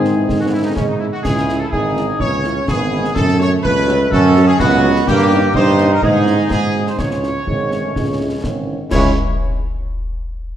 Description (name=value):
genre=military-style march for wind band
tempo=125 BPM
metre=2/4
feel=straight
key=C# minor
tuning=A4 = 439 Hz
part: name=warm trumpet section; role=melody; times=0.0-9.1 s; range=C#4 to C#5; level=-22 LUFS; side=right 1 dB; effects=none
part: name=warm euphonium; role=second line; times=0.0-1.2, 7.5-8.9 s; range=D#3 to C#4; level=-25 LUFS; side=right 2 dB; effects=none
part: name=warm woodwind section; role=second line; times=0.0-9.1 s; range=C#4 to C#5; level=-23 LUFS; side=left 1 dB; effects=none
part: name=dark French horn section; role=accompaniment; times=0.0-9.1 s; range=F#3 to F#4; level=-25 LUFS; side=left 3 dB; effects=none
part: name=warm trombone section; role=sustained chords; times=0.0-9.1 s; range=G#3 to E4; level=-22 LUFS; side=right 1 dB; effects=none
part: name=warm tuba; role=bass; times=0.0-9.1 s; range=G#1 to G#2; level=-17 LUFS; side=right 2 dB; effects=none
part: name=concert snare drum, concert bass drum and clash cymbals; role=drums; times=0.0-9.2 s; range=none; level=-22 LUFS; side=left 1 dB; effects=none
room=wet scoring stage reverb, RT60 1.8 s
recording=dark, warm production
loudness=-13 LUFS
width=side -10 dB against mid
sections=0.0-8.9 A section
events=none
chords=0.0 G#; 1.2 C#m; 3.2 F#m; 5.1 D#7/G; 6.0 C#m/G#; 6.5 G#7; 7.0 C#m